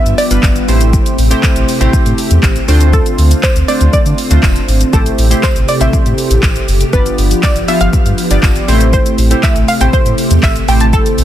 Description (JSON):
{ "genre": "dance-pop", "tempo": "120 BPM", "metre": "4/4", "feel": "straight", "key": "A minor", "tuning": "A4 = 441 Hz", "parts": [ { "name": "wide unison pluck", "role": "melody", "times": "0.0-11.2 s", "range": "A4 to A5", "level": "-18 LUFS", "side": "right 1 dB", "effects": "digital delay" }, { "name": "chorused retro synth keys", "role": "accompaniment", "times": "0.0-11.2 s", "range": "G3 to F5", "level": "-17 LUFS", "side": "right 1 dB", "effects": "sidechain pumping" }, { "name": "ensemble organ-string", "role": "sustained chords", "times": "0.0-11.2 s", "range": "C3 to G4", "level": "-19 LUFS", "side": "equal", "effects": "ensemble chorus, sidechain pumping" }, { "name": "sub bass with octave", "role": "bass", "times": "0.1-11.2 s", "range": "E1 to D3", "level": "-12 LUFS", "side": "equal", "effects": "sidechain pumping" }, { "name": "deep house drum kit", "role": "drums", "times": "0.1-11.2 s", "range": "handclaps, hi-hat, kick drum, shaker", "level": "-13 LUFS", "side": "equal", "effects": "none" }, { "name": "tambourine", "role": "percussion", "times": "0.4-10.6 s", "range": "none", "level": "-33 LUFS", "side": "right 10 dB", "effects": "none" } ], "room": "digital ambience", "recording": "dense, heavily limited modern master", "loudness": "-9 LUFS", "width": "side -12 dB against mid", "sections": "0.0-11.2 A section", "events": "none", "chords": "0.0 G7; 0.7 Am7; 2.7 Dm7; 4.9 Am7; 6.9 G7; 8.7 Am7", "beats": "0.43 | 0.93 1.43 1.93 2.43 | 2.93 3.43 3.93 4.43 | 4.93 5.43 5.93 6.43 | 6.93 7.43 7.93 8.43 | 8.93 9.43 9.93 10.43 | 10.93" }